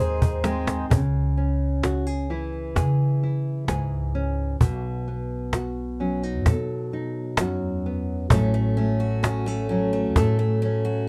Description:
acoustic folk duo or small band; 65 BPM; 4/4; straight; C# minor; A4 = 440 Hz
nylon-string guitar; accompaniment; 0.0-11.1 s; F#2 to B#4; -30 LUFS; equal
hand-pumped harmonium; sustained chords; 0.0-0.9 s; G#3 to B#4; -35 LUFS; equal
picked steel-string acoustic guitar; arpeggios; 0.0-1.0, 8.3-11.1 s; D#3 to G#4; -32 LUFS; equal
upright bass; bass; 0.0-11.0 s; A1 to C#3; -28 LUFS; equal
cajon; percussion; 0.2-10.7 s; -23 LUFS; equal
light reverb; dark, warm production; -24 LUFS; mono
0.9-11.1 A section
drum fill 0.0-0.9
0.0 G#; 0.9 C#m; 4.6 B; 8.3 F#m/A
| 0.90 1.83 2.75 3.68 | 4.61 5.53 6.46 7.38 | 8.31 9.24 10.16 11.09

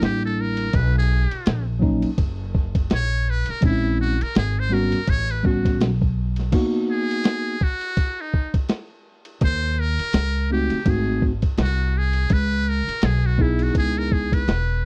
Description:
hip hop, jazz-hop; 83 BPM; 4/4; swing 58% on 16ths; G# minor; A4 = 439 Hz
trumpet with metal mute; melody; 0.0-14.9 s; D#4 to C#5; -29 LUFS; equal
mellow tine electric piano; accompaniment; 0.0-14.4 s; F#3 to G#4; -25 LUFS; equal
upright bass; bass; 0.0-14.9 s; E1 to D#2; -25 LUFS; equal
lo-fi sampler-style drum kit; drums; 0.0-14.7 s; crash cymbal, hi-hat, kick drum, ride cymbal, snare drum; -23 LUFS; equal
digital ambience; dry, close 1970s-style studio recording; -22 LUFS; mono
0.0-6.5 A section; 6.5-14.9 A section
muted trumpet solo 0.0-6.5, 6.5-14.9; break 6.5-9.4
0.0 C9 (rootless); 0.7 Bmaj7(no3); 3.6 A#m7b5; 5.1 A13; 6.5 G#m9; 9.4 D#m7; 10.9 G#7b9; 12.3 C#m7
0.02 | 0.74 1.46 2.19 2.91 | 3.63 4.36 5.08 5.80 | 6.52 7.25 7.97 8.69 | 9.42 10.14 10.86 11.59 | 12.31 13.03 13.75 14.48

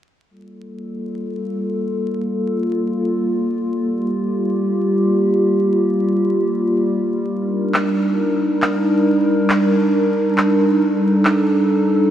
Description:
future garage; free time; G minor; A4 = 440 Hz
warbly tape-like pad; sustained chords; 0.8-12.1 s; G3 to Bb4; -16 LUFS; equal; chorus, built-in reverb
electronic handclaps; drums; 7.7-11.4 s; -24 LUFS; equal; vintage 12-bit sampler grit, studio reverb
wet huge ambient reverb, RT60 4.9 s; dreamy mix soaked in reverb, vinyl crackle; -16 LUFS; side -10 dB against mid
0.3-12.1 A section
0.3 Gm9; 7.3 Ebmaj7
free time

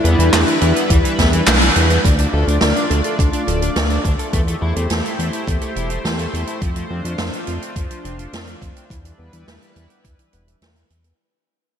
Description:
synthwave; 105 BPM; 4/4; straight; A4 = 439 Hz
wide unison lead; melody; 0.0-1.4 s; E4; -22 LUFS; left 1 dB; cassette tape, slapback echo, ping-pong delay
chorused pulse-width pad; sustained chords; 0.0-11.2 s; G3 to D5; -23 LUFS; equal; sidechain pumping
overdriven electric guitar; riff; 0.0-11.1 s; E3 to D5; -27 LUFS; left 2 dB; analog chorus, low-pass filter, slapback echo, ping-pong delay
fat analog bass; bass; 0.0-11.1 s; D1 to F2; -19 LUFS; equal
swinging big-band drum kit; drums; 0.0-11.2 s; handclaps, hi-hat, snare drum; -20 LUFS; right 1 dB
electronic kick drum; drums; 0.9-10.2 s; -18 LUFS; equal
moderate lush hall reverb, RT60 2.9 s; big arena sound; -15 LUFS; side -8 dB against mid
0.0-2.0 A section; 2.0-11.2 B section
band accent 1.5; fade-out 2.0-11.2; filter sweep on analog synth bass 2.0-11.2; filter sweep on overdriven electric guitar 2.0-11.2
0.0 Em7; 2.0 Dm; 4.3 Am7/E; 6.6 F6; 8.9 Em7
0.33 0.90 1.47 | 2.05 2.62 3.19 3.76 | 4.33 4.90 5.47 6.05 | 6.62 7.19 7.76 8.33 | 8.90 9.47 10.05 10.62

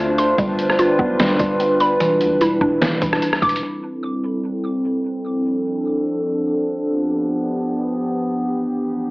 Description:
hip hop, atmospheric cloud-rap; 148 BPM; 4/4; half-time; A minor; A4 = 440 Hz
warbly tape-like pad; sustained chords; 0.0-9.1 s; E3 to C5; -19 LUFS; equal; chorus, built-in reverb, sidechain pumping, low-pass filter, cassette tape
mallet-like synth pluck; arpeggios; 0.0-3.6 s; D3 to D6; -20 LUFS; equal; chorus, low-pass filter, cassette tape, tape echo
long sustained 808-style bass; bass; 0.0-3.6 s; E1 to E2; -31 LUFS; equal
trip hop sampler-style drum kit; drums; 0.2-3.6 s; hi-hat, kick drum, rim click, snare drum; -23 LUFS; equal; cassette tape
light reverb; home recording on cassette, AM radio sound; -17 LUFS; side -23 dB against mid
0.0-3.6 A section; 3.6-9.1 B section
filter sweep on ambient pad 3.6-9.1
0.4 G7; 2.0 Em7; 3.6 Am7; 5.2 Dm7; 6.9 G7; 8.5 Em7
| 0.38 0.79 1.19 1.60 | 2.00 2.41 2.81 3.22 | 3.63 4.03 4.44 4.84 | 5.25 5.65 6.06 6.46 | 6.87 7.28 7.68 8.09 | 8.49 8.90

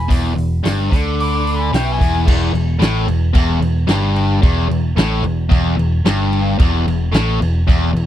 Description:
blues rock power trio and southern rock; 111 BPM; 4/4; straight; A4 = 440 Hz
mellow harmonica; melody; 0.0-2.2 s; G5 to D6; -24 LUFS; left 1 dB; overdrive
lead guitar through a small cranked amp; second line; 0.0-2.2 s; E5 to B5; -30 LUFS; right 1 dB; overdrive
distorted electric guitar; riff; 0.0-8.1 s; E2 to D3; -19 LUFS; left 2 dB; overdrive
picked electric bass; bass; 0.0-8.1 s; E1 to D2; -17 LUFS; equal
vintage drum kit; drums; 0.1-8.1 s; crash cymbal, hi-hat, kick drum, snare drum; -17 LUFS; equal
little or no reverb; dry, close 1970s-style studio recording; -14 LUFS; side -12 dB against mid
0.0-2.3 A section; 2.3-8.1 B section
0.0 E; 2.3 Emadd11
| 0.10 0.65 1.19 1.73 | 2.27 2.81 3.36 3.90 | 4.44 4.97 5.51 6.05 | 6.59 7.13 7.67

